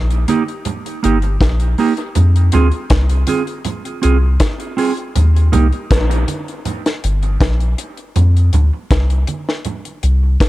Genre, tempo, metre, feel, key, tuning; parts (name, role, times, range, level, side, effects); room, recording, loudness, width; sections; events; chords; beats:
dub reggae; 80 BPM; 4/4; straight; Eb major; A4 = 443 Hz
soft dub sub bass; bass; 0.0-10.4 s; G1 to F2; -13 LUFS; equal
deep reggae drum kit; drums; 0.1-10.5 s; hi-hat, kick drum, snare drum; -18 LUFS; equal
mellow electric guitar; accompaniment; 0.3-5.7 s; Bb3 to Ab4; -20 LUFS; right 5 dB; dub echo
congas; percussion; 0.3-9.8 s; -24 LUFS; right 5 dB; dub echo
light reverb, small room ambience; dark, warm production, faint mains hum; -13 LUFS; side -16 dB against mid
0.0-10.5 A section
0.0 Eb; 2.2 Fm; 5.2 Eb; 8.2 F5
0.66 1.41 | 2.15 2.90 3.65 4.40 | 5.15 5.90 6.65 7.40 | 8.15 8.90 9.65 10.40